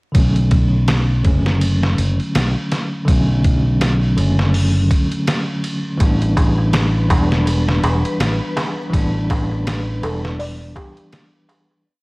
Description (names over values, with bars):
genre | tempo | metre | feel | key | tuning
trip hop | 82 BPM | 4/4 | swing 58% on 16ths | B minor | A4 = 440 Hz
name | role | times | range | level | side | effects
bell-like tine electric piano | accompaniment | 0.1-11.9 s | D3 to D4 | -20 LUFS | equal | tremolo, vintage 12-bit sampler grit
trip hop sampler-style drum kit | drums | 0.1-11.7 s | hi-hat, kick drum, ride cymbal, snare drum | -20 LUFS | equal | none
fingered electric bass | bass | 0.2-10.7 s | E1 to B1 | -18 LUFS | equal | tube saturation
darbuka | percussion | 6.0-11.8 s | none | -27 LUFS | right 1 dB | none
wind-like tuned noise texture | texture | 6.5-11.9 s | B3 to B4 | -30 LUFS | left 1 dB | built-in reverb
felt-muted upright piano | melody | 10.0-11.5 s | G4 to D5 | -31 LUFS | equal | none
room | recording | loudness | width
light reverb, digital ambience | worn, warbling old tape, cassette tape, vinyl crackle, warbly pitch drift | -15 LUFS | side -26 dB against mid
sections
0.2-11.9 groove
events
fade-out 8.0-11.9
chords
0.2 Bm9; 6.0 A9sus4